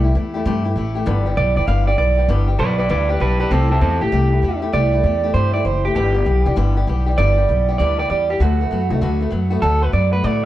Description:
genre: rockabilly.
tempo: 196 BPM.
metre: 4/4.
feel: swing 65% on 8ths.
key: G major.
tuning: A4 = 440 Hz.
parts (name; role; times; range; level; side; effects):
picked old ladder-braced acoustic guitar; accompaniment; 0.0-10.4 s; G2 to G4; -23 LUFS; left 3 dB; none.
upright bass; bass; 0.0-10.5 s; E1 to A2; -18 LUFS; equal; none.
electric guitar through a small old amp; melody; 1.4-10.4 s; C4 to F5; -20 LUFS; right 3 dB; tape echo.
room: light reverb.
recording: none.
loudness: -15 LUFS.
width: side -14 dB against mid.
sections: 0.0-10.5 A section.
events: none.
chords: 0.0 C6; 1.1 G6; 3.5 C6; 6.0 G6; 8.4 D6.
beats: 0.15 0.45 0.76 | 1.06 1.37 1.68 1.98 | 2.29 2.59 2.90 3.20 | 3.51 3.81 4.12 4.43 | 4.73 5.04 5.34 5.65 | 5.96 6.26 6.57 6.87 | 7.18 7.49 7.79 8.10 | 8.40 8.71 9.02 9.32 | 9.63 9.94 10.24.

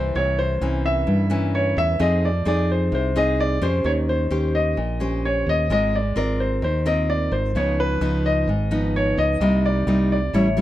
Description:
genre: bossa nova.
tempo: 130 BPM.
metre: 4/4.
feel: straight.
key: C minor.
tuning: A4 = 440 Hz.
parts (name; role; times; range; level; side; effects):
warm grand piano; melody; 0.0-10.6 s; Cb5 to E5; -23 LUFS; left 1 dB; none.
nylon-string guitar; accompaniment; 0.0-10.6 s; G2 to C5; -23 LUFS; left 1 dB; none.
fingered electric bass; bass; 0.0-10.6 s; Ab1 to G2; -24 LUFS; right 1 dB; none.
room: light reverb.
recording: dark, warm production.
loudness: -19 LUFS.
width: side -14 dB against mid.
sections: 0.0-10.6 A section.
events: none.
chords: 0.1 C7b9; 2.0 Fm7; 3.8 Eb6; 5.7 Ab69; 7.5 Db9; 9.4 Cm7.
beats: | 0.14 0.61 1.07 1.53 | 2.00 2.46 2.92 3.38 | 3.85 4.31 4.77 5.24 | 5.70 6.16 6.62 7.09 | 7.55 8.01 8.48 8.94 | 9.40 9.87 10.33.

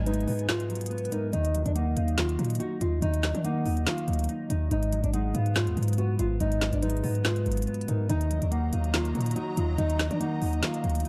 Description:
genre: hip hop, trap.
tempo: 142 BPM.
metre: 4/4.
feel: half-time.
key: Eb minor.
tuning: A4 = 440 Hz.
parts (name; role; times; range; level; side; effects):
nylon-string guitar; melody; 0.0-11.1 s; D4 to Gb4; -36 LUFS; equal; tape echo.
hollow clarinet-like synth lead; second line; 0.0-11.0 s; Bb4 to Gb5; -38 LUFS; equal; chorus, tape echo.
mellow electric guitar; accompaniment; 0.0-11.1 s; Ab2 to Eb4; -34 LUFS; equal; analog chorus.
warm studio string section; sustained chords; 0.0-1.3, 8.1-11.1 s; Gb3 to Bb5; -44 LUFS; equal; none.
hard-hitting 808-style bass; bass; 0.0-11.0 s; Ab1 to Eb3; -30 LUFS; equal; none.
trap drum kit; drums; 0.1-11.1 s; hi-hat, snare drum; -36 LUFS; equal; none.
room: little or no reverb.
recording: dark, warm production, lossy compression artefacts.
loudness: -28 LUFS.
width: mono.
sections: 0.0-1.3 A section; 1.3-11.1 A section.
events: break 0.5-1.3.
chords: 0.0 Abm7; 1.3 Ebm; 4.7 Abm7; 8.1 Ebm.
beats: 0.07 0.49 0.91 | 1.33 1.75 2.18 2.60 | 3.02 3.44 3.87 4.29 | 4.71 5.14 5.56 5.98 | 6.40 6.83 7.25 7.67 | 8.09 8.52 8.94 9.36 | 9.78 10.21 10.63 11.05.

